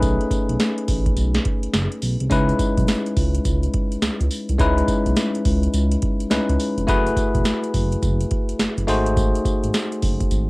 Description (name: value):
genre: R&B, new jack swing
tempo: 105 BPM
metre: 4/4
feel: swing 63% on 16ths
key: C# minor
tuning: A4 = 440 Hz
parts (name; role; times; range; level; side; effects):
- bell-like tine electric piano; accompaniment; 0.0-10.5 s; G#3 to B#4; -22 LUFS; left 2 dB; cassette tape
- smooth synth bass; bass; 0.0-10.5 s; E1 to C#2; -22 LUFS; equal; none
- booming analog drum machine; drums; 0.0-10.5 s; hi-hat, kick drum, snare drum, tambourine; -22 LUFS; equal; overdrive, cassette tape
- tube shaker; percussion; 2.3-10.5 s; none; -46 LUFS; right 5 dB; none
room: little or no reverb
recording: home recording on cassette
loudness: -18 LUFS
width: side -23 dB against mid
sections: 0.0-10.5 A section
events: none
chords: 0.0 B13; 2.3 C#m9; 6.9 F#m11; 8.9 G#7b9